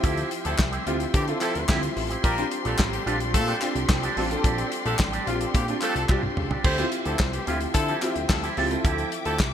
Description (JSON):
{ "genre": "early-eighties boogie funk", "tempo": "109 BPM", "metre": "4/4", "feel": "straight", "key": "D minor", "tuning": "A4 = 440 Hz", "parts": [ { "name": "warm concert grand piano", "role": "accompaniment", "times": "0.0-9.5 s", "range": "C4 to A4", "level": "-29 LUFS", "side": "equal", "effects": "ensemble chorus" }, { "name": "warm studio string section", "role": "sustained chords", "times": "0.0-9.5 s", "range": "F3 to D6", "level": "-33 LUFS", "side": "left 3 dB", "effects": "none" }, { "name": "electric guitar with an envelope filter", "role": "riff", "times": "0.0-9.4 s", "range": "F3 to A4", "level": "-32 LUFS", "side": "right 6 dB", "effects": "lush chorus" }, { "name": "fat analog bass", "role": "bass", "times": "0.0-9.5 s", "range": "A1 to D3", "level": "-30 LUFS", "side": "equal", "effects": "none" }, { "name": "damped 70s drum kit", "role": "drums", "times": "0.0-9.5 s", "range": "crash cymbal, handclaps, hi-hat, kick drum, snare drum, toms", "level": "-26 LUFS", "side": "equal", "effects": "none" }, { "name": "warm horn section", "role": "second line", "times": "0.5-9.4 s", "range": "C3 to C5", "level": "-31 LUFS", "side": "left 2 dB", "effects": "ping-pong delay" }, { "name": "group handclap", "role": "percussion", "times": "0.6-9.5 s", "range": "none", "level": "-36 LUFS", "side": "left 3 dB", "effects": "none" } ], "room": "moderate plate reverb, RT60 1.8 s, small room ambience", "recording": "bright 1980s-style digital production", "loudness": "-22 LUFS", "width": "side -9 dB against mid", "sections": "0.0-9.5 A section", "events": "drum fill 6.1-6.6", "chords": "0.0 Dm11; 2.2 Bb69; 6.6 Dm11" }